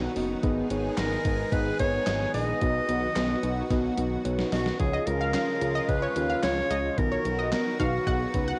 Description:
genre	synth-pop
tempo	110 BPM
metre	4/4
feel	straight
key	Db mixolydian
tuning	A4 = 439 Hz
part	bright clarinet	melody	0.0-8.6 s	Gb4 to Eb5	-32 LUFS	equal	cassette tape
part	mellow FM electric piano	accompaniment	0.0-8.6 s	Cb4 to Eb5	-33 LUFS	equal	chorus, phaser, cassette tape
part	lush unison pad	sustained chords	0.0-8.6 s	Db3 to Ab4	-36 LUFS	equal	chorus, cassette tape
part	fat analog bass	bass	0.0-8.5 s	Gb1 to Eb2	-34 LUFS	equal	none
part	gated 80s digital drum machine	drums	0.2-8.5 s	handclaps, hi-hat, kick drum, snare drum	-33 LUFS	equal	gated reverb, gated reverb snare, cassette tape
part	soft round pluck	arpeggios	4.8-8.6 s	Eb3 to F5	-38 LUFS	equal	chorus, cassette tape
part	analog pluck	second line	4.9-8.6 s	Db5 to Gb5	-35 LUFS	equal	chorus, cassette tape, analog delay
room	light reverb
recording	home recording on cassette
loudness	-27 LUFS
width	mono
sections	0.0-4.8 A section; 4.8-8.6 B section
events	drum fill 3.7-4.8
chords	0.4 Abm; 2.6 Cb; 4.8 Db; 7.0 Cb

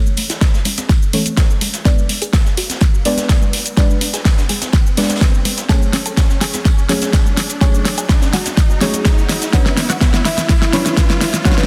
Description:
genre	progressive house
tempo	125 BPM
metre	4/4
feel	straight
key	F# minor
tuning	A4 = 440 Hz
part	deep mellow chord stab	stabs	0.0-11.7 s	E3 to D5	-24 LUFS	equal	chorus, sidechain pumping, digital delay
part	riser	sound effects	0.7-11.7 s	none	-32 LUFS	equal	none
part	tight sequenced synth	arpeggios	0.1-11.6 s	G#3 to B4	-29 LUFS	equal	chorus, phaser, sidechain pumping, digital delay
part	pop drum kit	drums	0.1-11.7 s	cabasa, hi-hat, snare drum	-21 LUFS	equal	studio reverb
part	soft brush drum kit	drums	0.2-11.6 s	hi-hat, snare drum, tambourine	-31 LUFS	equal	high-pass filter on hats, studio reverb, soft clipping on snare, high-pass filter on snare, high-pass filter on perc, high-pass filter on room
part	electronic kick drum	drums	0.4-11.6 s	none	-16 LUFS	equal	studio reverb
part	congas and bongos	percussion	0.7-11.6 s	none	-29 LUFS	equal	none
room	light reverb, small room ambience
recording	dense, heavily limited modern master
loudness	-15 LUFS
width	mono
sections	0.0-11.7 A section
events	build-up 0.0-11.7; drum fill 0.0-11.7; filter sweep on synth arpeggio sound 0.0-11.7; filter sweep on synth stab 0.0-11.7; riser 0.7-11.7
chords	0.0 A; 1.9 G#dim; 5.7 F#madd9; 9.5 Bmadd9

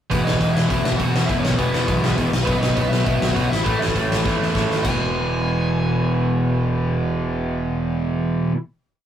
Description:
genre	punk rock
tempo	202 BPM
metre	4/4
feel	straight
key	E major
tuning	A4 = 441 Hz
part	dark smooth lead guitar	melody	0.1-8.0 s	B3 to G#5	-27 LUFS	left 2 dB	overdrive
part	distorted electric guitar	riff	0.1-8.6 s	E2 to B3	-27 LUFS	left 2 dB	distortion
part	overdriven electric guitar	riff	0.1-8.6 s	E2 to B3	-22 LUFS	right 2 dB	none
part	growling picked electric bass	bass	0.1-8.5 s	E1 to E2	-25 LUFS	left 1 dB	overdrive
part	big rock drum kit	drums	0.1-4.9 s	crash cymbal, hi-hat, kick drum, snare drum	-23 LUFS	left 1 dB	none
room	moderate booth ambience, RT60 0.2 s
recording	rough rehearsal-room recording, warm saturation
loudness	-18 LUFS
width	side -10 dB against mid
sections	0.1-4.8 verse; 4.8-7.2 final chord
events	drum fill 4.2-4.8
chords	0.1 E5; 2.3 B; 3.5 A5; 4.8 E

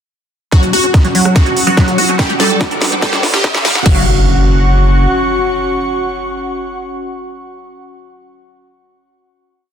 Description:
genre	psychedelic trance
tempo	144 BPM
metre	4/4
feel	straight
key	unclear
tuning	A4 = 440 Hz
part	supersaw stab	melody	0.5-7.0 s	F#4 to A4	-18 LUFS	equal	phaser, sidechain pumping, tape echo
part	evolving wavetable pad	sustained chords	0.8-3.9 s	F#3 to F#4	-24 LUFS	right 1 dB	chorus, built-in reverb, sidechain pumping
part	liquid acid bass	riff	0.5-4.1 s	F#3 to G4	-18 LUFS	equal	chorus, auto-pan, sidechain pumping, digital delay
part	garage drum kit	drums	0.5-4.0 s	crash cymbal, kick drum	-14 LUFS	equal	none
part	garage drum kit	drums	0.5-3.8 s	hi-hat, rim click, snare drum	-16 LUFS	equal	none
part	riser and impact	sound effects	2.7-7.0 s	none	-23 LUFS	equal	none
part	airy breathy pad	texture	0.5-7.2 s	C#4 to D6	-20 LUFS	equal	chorus, sidechain pumping
part	round analog bass	bass	0.6-5.1 s	E1 to G1	-14 LUFS	equal	high-pass filter
part	metallic wobble bass	second line	1.7-3.6 s	A3 to C#4	-28 LUFS	left 2 dB	none
room	light reverb, digital ambience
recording	dense, heavily limited modern master, high-pass filter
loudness	-10 LUFS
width	side -8 dB against mid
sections	0.5-3.9 build; 3.9-7.2 final chord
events	build-up 0.5-3.9; drum fill 0.5-3.9; filter sweep on acid bass 0.5-3.9; filter sweep on ambient pad 0.5-3.9; filter sweep 0.5-3.9; riser 2.7-3.9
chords	0.5 F#5; 2.2 G5; 3.9 F#5

